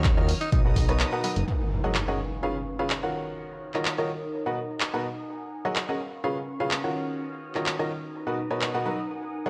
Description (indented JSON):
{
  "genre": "piano house",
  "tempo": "126 BPM",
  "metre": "4/4",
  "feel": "straight",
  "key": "unclear",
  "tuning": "A4 = 438 Hz",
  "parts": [
    { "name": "rich chamber violin section", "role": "sustained chords", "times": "0.0-9.5 s", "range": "A#4 to E#6", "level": "-43 LUFS", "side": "equal", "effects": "sidechain pumping, low-pass filter" },
    { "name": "bright upright piano", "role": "riff", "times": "0.0-9.5 s", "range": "B2 to F#5", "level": "-32 LUFS", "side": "equal", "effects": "sidechain pumping, delay" },
    { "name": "fat analog bass", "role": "bass", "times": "0.0-1.4 s", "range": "F#1 to D#2", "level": "-28 LUFS", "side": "equal", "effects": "sidechain pumping" },
    { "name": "electronic kick drum", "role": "drums", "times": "0.0-0.9 s", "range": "none", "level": "-25 LUFS", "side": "equal", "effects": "none" },
    { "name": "punchy analog drum machine", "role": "drums", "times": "0.0-8.7 s", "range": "handclaps, hi-hat", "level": "-33 LUFS", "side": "equal", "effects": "none" },
    { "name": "warbly tape-like pad", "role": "texture", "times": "0.0-9.5 s", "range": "F#3 to A#5", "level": "-39 LUFS", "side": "equal", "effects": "chorus, built-in reverb, sidechain pumping" },
    { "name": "growling tenor saxophone", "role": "melody", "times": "0.4-0.6 s", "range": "D#4", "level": "-39 LUFS", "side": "equal", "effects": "none" },
    { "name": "impact", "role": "sound effects", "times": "1.5-3.4 s", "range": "none", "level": "-34 LUFS", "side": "equal", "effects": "none" }
  ],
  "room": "light reverb, digital ambience",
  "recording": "dark, warm production",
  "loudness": "-28 LUFS",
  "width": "mono",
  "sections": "0.0-1.5 A section; 1.5-9.5 B section",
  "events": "break 1.0-1.5; impact 1.5-3.4; filter sweep on violin section 1.5-9.5",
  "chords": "0.0 D#m9; 0.5 Bmaj7; 1.5 F#69; 2.2 C#7; 3.1 D#m9; 4.3 Bmaj7; 5.3 F#69; 6.0 C#7; 7.0 D#m9; 8.1 Bmaj7"
}